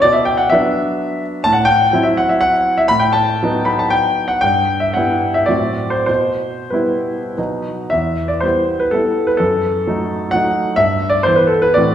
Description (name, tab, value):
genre	classical, romantic triple-time dance for piano with dotted rhythms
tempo	87-137 BPM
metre	3/4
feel	rubato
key	E minor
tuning	A4 = 438 Hz
part	clear grand piano	solo	0.0-11.9 s	E2 to B5	-14 LUFS	equal	none
room	wet recital hall reverb, RT60 1.2 s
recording	heard from further back in the room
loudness	-14 LUFS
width	side -10 dB against mid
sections	0.0-7.9 A section; 7.9-11.9 B section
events	none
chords	0.0 Bm; 1.4 F#m7b5/A; 2.9 B7/A; 4.4 Em/G; 5.5 F#dim/A; 6.1 Em/B; 7.4 B; 7.9 Em; 9.4 D#dim/F#; 10.8 Em/G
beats	| 0.02 0.50 0.99 | 1.45 1.93 2.42 | 2.91 3.40 3.92 | 4.42 4.94 5.49 | 6.08 6.74 7.38 | 7.92 8.43 8.94 | 9.40 9.88 10.35 | 10.80 11.27 11.77